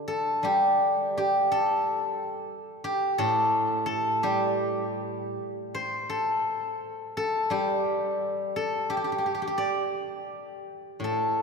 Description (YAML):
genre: chinese traditional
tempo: 78-89 BPM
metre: 2/4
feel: rubato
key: unclear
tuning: A4 = 440 Hz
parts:
  - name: steel-string zither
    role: solo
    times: 0.0-11.4 s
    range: A2 to D5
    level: -25 LUFS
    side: equal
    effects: none
room: wet church reverb, RT60 3.2 s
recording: recorded in a church or concert hall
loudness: -25 LUFS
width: side -4 dB against mid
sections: 0.0-11.0 A section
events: none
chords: none